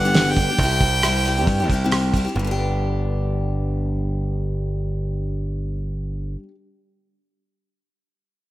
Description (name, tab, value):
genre	folk rock and heartland rock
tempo	135 BPM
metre	4/4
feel	straight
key	G major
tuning	A4 = 439 Hz
part	warm harmonica	melody	0.0-1.9 s	F#5 to G5	-22 LUFS	right 1 dB	none
part	picked steel-string acoustic guitar	accompaniment	0.0-6.5 s	G2 to G4	-26 LUFS	left 3 dB	none
part	modern bright picked electric bass	bass	0.0-6.4 s	G1 to G2	-23 LUFS	right 1 dB	none
part	cloth-damped thuddy drum kit	drums	0.1-2.2 s	hi-hat, kick drum, rim click, snare drum	-22 LUFS	right 1 dB	gated reverb
room	light reverb, studio ambience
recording	bright 1980s-style digital production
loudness	-19 LUFS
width	side -15 dB against mid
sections	0.0-2.4 A section; 2.4-5.9 B section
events	none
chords	0.0 G; 0.6 C; 2.4 G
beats	0.14 | 0.58 1.02 1.47 1.91 | 2.36 2.80 3.25 3.69 | 4.14 4.59 5.03 5.48